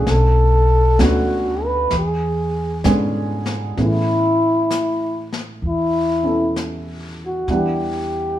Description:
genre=jazz ballad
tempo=65 BPM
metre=4/4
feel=swing 66% on 8ths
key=A major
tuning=A4 = 440 Hz
part: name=breathy flugelhorn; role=melody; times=0.0-8.4 s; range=E4 to B4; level=-19 LUFS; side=left 1 dB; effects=none
part: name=dark baby grand piano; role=accompaniment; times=0.0-8.4 s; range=D3 to F#5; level=-22 LUFS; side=right 1 dB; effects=none
part: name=upright bass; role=bass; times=0.0-8.4 s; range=B1 to A2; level=-21 LUFS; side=equal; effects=none
part: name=jazz brush drum kit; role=drums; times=0.1-8.4 s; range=brushed snare drum, hi-hat, snare drum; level=-30 LUFS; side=left 4 dB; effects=none
room=moderate large studio reverb, RT60 0.9 s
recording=heard from further back in the room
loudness=-16 LUFS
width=side -12 dB against mid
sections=0.0-3.8 A section; 3.8-8.4 B section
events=none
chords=0.1 Bm7; 1.9 E6; 3.8 Amaj9; 7.5 Em7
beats=| 0.07 0.99 1.92 2.84 | 3.77 4.70 5.63 6.55 | 7.48

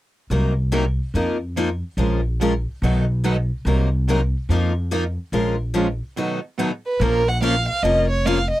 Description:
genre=acoustic string swing (jazz manouche)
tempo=143 BPM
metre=4/4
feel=swing 62% on 8ths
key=Bb minor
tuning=A4 = 440 Hz
part: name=picked steel-string acoustic guitar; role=accompaniment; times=0.3-8.4 s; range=B2 to Bb4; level=-23 LUFS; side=left 4 dB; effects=none
part: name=picked steel-string acoustic guitar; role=accompaniment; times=0.3-8.4 s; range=B2 to Bb4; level=-26 LUFS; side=right 6 dB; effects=none
part: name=upright bass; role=bass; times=0.3-8.5 s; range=F1 to F2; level=-21 LUFS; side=equal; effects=none
part: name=warm violin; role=melody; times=6.9-8.6 s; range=Bb4 to Gb5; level=-20 LUFS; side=right 2 dB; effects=none
room=light reverb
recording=dry, close 1970s-style studio recording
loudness=-19 LUFS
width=side -15 dB against mid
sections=0.3-7.0 A section; 7.0-8.6 B section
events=break 6.2-7.0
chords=0.3 Cm7b5; 1.1 F7sus4; 2.0 Bbm7; 2.8 B7; 3.7 Cm7b5; 4.5 F7sus4; 5.3 Bbm7; 6.2 B7; 7.0 Bbm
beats=| 0.30 0.72 1.14 1.56 | 1.98 2.40 2.82 3.24 | 3.66 4.08 4.50 4.91 | 5.33 5.75 6.17 6.59 | 7.01 7.42 7.84 8.26

